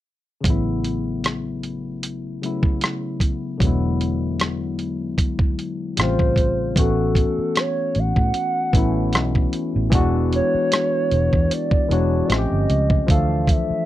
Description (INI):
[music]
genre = R&B, neo-soul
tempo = 76 BPM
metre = 4/4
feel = swing 54% on 16ths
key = A major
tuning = A4 = 440 Hz
[part]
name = barky tine electric piano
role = accompaniment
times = 0.4-13.9 s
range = B#2 to A4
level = -24 LUFS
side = left 3 dB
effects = overdrive, lush chorus
[part]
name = dusty soul sampler-style drum kit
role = drums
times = 0.4-13.7 s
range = hi-hat, kick drum, rim click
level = -20 LUFS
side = right 1 dB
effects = none
[part]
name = vintage muted fingered electric bass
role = bass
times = 0.5-13.7 s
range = E1 to A2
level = -22 LUFS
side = right 1 dB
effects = none
[part]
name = hollow clarinet-like synth lead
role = melody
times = 6.0-13.9 s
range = A4 to F#5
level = -23 LUFS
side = right 2 dB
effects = chorus
[sound]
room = little or no reverb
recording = dry, close 1970s-style studio recording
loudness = -18 LUFS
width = side -14 dB against mid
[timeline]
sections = 0.4-6.8 A section; 6.8-13.9 B section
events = none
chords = 0.4 A69; 3.6 E9; 6.0 A7alt; 6.8 A69; 9.9 E9; 12.3 A7alt; 13.1 Dmadd9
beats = | 0.44 1.23 2.02 2.81 | 3.60 4.39 5.18 5.97 | 6.76 7.55 8.34 9.13 | 9.92 10.71 11.50 12.29 | 13.08